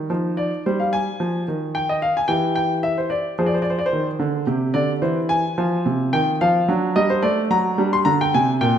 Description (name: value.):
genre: classical-period piano sonatina.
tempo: 109 BPM.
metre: 4/4.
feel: rubato.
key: Eb major.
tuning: A4 = 439 Hz.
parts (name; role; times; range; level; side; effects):
clear concert grand piano; solo; 0.0-8.8 s; Bb2 to C6; -18 LUFS; equal; none.
room: wet recital hall reverb, RT60 1.7 s.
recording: none.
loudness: -18 LUFS.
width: side -9 dB against mid.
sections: 0.0-8.8 A section.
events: none.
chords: 0.0 Eb; 2.3 Em7; 3.4 Fm; 4.5 C; 5.6 Fm; 6.7 D/F#; 7.8 Gm.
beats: | 0.11 0.66 1.21 1.75 | 2.29 2.84 3.38 3.92 | 4.46 5.02 5.58 6.13 | 6.69 7.24 7.79 8.34.